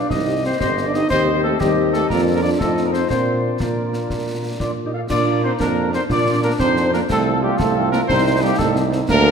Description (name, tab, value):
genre	military-style march for wind band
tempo	120 BPM (dotted quarters)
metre	6/8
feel	straight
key	Bb major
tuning	A4 = 440 Hz
part	dark trumpet section	melody	0.0-9.3 s	G4 to F5	-22 LUFS	left 2 dB	none
part	dark euphonium	second line	0.0-9.3 s	G3 to F4	-24 LUFS	right 5 dB	none
part	mellow woodwind section	second line	0.0-9.3 s	Bb3 to Eb5	-28 LUFS	left 1 dB	none
part	warm tuba	bass	0.1-9.3 s	G1 to Bb2	-21 LUFS	right 2 dB	none
part	concert snare drum, concert bass drum and clash cymbals	drums	0.1-9.2 s	none	-28 LUFS	left 1 dB	none
part	mellow French horn section	accompaniment	0.3-9.3 s	Eb3 to G4	-26 LUFS	left 7 dB	none
part	warm trombone section	sustained chords	5.1-9.3 s	Bb3 to F4	-26 LUFS	right 4 dB	none
room	wet scoring stage reverb, RT60 1.7 s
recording	none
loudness	-16 LUFS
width	side -6 dB against mid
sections	0.0-5.1 A section; 5.1-9.3 A section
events	none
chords	0.1 Cm; 1.1 Cm/Eb; 2.1 Bb/F; 2.6 F7; 3.1 Bb; 7.1 Adim/C